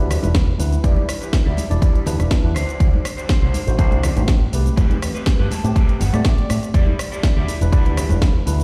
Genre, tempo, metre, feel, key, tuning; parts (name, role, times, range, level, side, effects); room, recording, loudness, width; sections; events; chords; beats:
nu-disco, nu disco; 122 BPM; 4/4; straight; E minor; A4 = 440 Hz
tine electric piano; accompaniment; 0.0-8.6 s; G3 to D5; -30 LUFS; equal; overdrive, digital delay
electric guitar at the edge of break-up; riff; 0.0-8.5 s; C4 to A5; -32 LUFS; equal; subtle chorus, low-pass filter, digital delay
picked electric bass with an envelope filter; bass; 0.0-8.6 s; E1 to A2; -22 LUFS; equal; sidechain pumping
house drum kit; drums; 0.1-8.6 s; hi-hat, rim click, shaker, snare drum; -30 LUFS; equal
congas; percussion; 0.1-8.6 s; -30 LUFS; equal
electronic kick drum; drums; 0.3-8.3 s; -18 LUFS; equal
little or no reverb; played on a big sound system in a bare room, stone room reverb; -18 LUFS; mono
0.0-8.6 A section
filter sweep on clean electric guitar 0.0-8.6; clean electric guitar fill 5.3-6.7
0.0 Em7; 2.6 D7; 4.8 Am9; 6.7 Em7
0.35 | 0.84 1.33 1.82 2.32 | 2.81 3.30 3.79 4.28 | 4.78 5.27 5.76 6.25 | 6.74 7.24 7.73 8.22